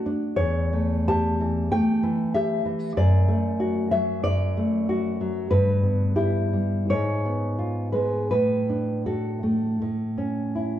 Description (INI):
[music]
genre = romantic piece for solo classical guitar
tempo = 78-99 BPM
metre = 4/4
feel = rubato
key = D major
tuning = A4 = 442 Hz
[part]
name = nylon-string guitar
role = solo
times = 0.0-10.8 s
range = E2 to A5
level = -21 LUFS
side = equal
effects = none
[sound]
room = moderate recital hall reverb, RT60 1.5 s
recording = dark, warm production, lossy compression artefacts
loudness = -21 LUFS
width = side -11 dB against mid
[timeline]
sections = 0.0-10.8 A section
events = none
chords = 0.4 A7/E; 3.0 D/F#; 5.5 Em/G; 6.9 G#madd11; 8.3 D/A; 9.8 A